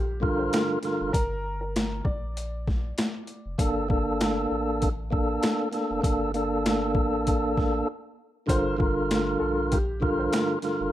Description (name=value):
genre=hip hop, boom-bap hip-hop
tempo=98 BPM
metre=4/4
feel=swing 55% on 16ths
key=G minor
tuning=A4 = 440 Hz
part: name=dark upright piano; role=melody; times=0.0-3.5, 8.5-10.3 s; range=G4 to D5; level=-35 LUFS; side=equal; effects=high-pass filter, low-pass filter, plate reverb
part: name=warm sub bass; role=bass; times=0.0-10.9 s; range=F1 to Bb1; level=-34 LUFS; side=equal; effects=none
part: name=tonewheel organ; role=accompaniment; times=0.2-10.9 s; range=G2 to Bb4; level=-25 LUFS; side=right 1 dB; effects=overdrive, fast rotary speaker, cassette tape, high-pass filter, low-pass filter, plate reverb
part: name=boom bap sampler-style drum kit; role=drums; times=0.2-10.8 s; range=hi-hat, kick drum, snare drum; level=-28 LUFS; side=equal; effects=overdrive
room=moderate studio reverb, RT60 0.5 s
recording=rough home demo mix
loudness=-24 LUFS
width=side -13 dB against mid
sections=0.0-10.9 A section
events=break 1.1-3.6, 7.9-8.5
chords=0.0 Gm7; 3.6 Bbmaj7; 8.5 Gm7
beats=0.53 | 1.14 1.75 2.36 2.98 | 3.59 4.20 4.81 5.43 | 6.04 6.65 7.26 7.88 | 8.49 9.10 9.71 10.32